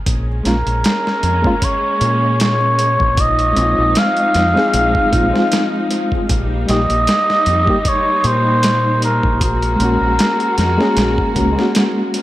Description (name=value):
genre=trip hop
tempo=77 BPM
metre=4/4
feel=swing 55% on 16ths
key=Bb minor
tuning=A4 = 440 Hz
part: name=warm studio string section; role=sustained chords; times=0.1-12.2 s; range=F3 to Gb4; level=-23 LUFS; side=equal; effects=none
part: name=deep dub fingered electric bass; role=bass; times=0.1-11.5 s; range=Bb1 to Bb2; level=-18 LUFS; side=equal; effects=none
part: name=dusty soul sampler-style drum kit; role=drums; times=0.1-12.2 s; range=hi-hat, kick drum, snare drum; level=-20 LUFS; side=equal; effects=overdrive, small room reverb, dub echo
part: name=reed electric piano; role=accompaniment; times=0.4-12.2 s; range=G3 to Ab4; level=-19 LUFS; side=left 1 dB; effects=medium tremolo, harmonic tremolo, vintage 12-bit sampler grit, tape echo
part: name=trumpet with cup mute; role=melody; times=0.5-11.7 s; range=Bb4 to F5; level=-17 LUFS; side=equal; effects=tape echo
room=light reverb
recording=echo-heavy mix, vinyl crackle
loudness=-13 LUFS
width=side -15 dB against mid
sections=0.0-12.2 A section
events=none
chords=0.1 Bbm7; 3.2 Fm7/Bb; 6.3 Eb/Bb; 9.4 Gbadd9/Bb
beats=| 0.06 0.84 1.62 2.40 | 3.18 3.96 4.74 5.51 | 6.29 7.07 7.85 8.63 | 9.41 10.19 10.97 11.75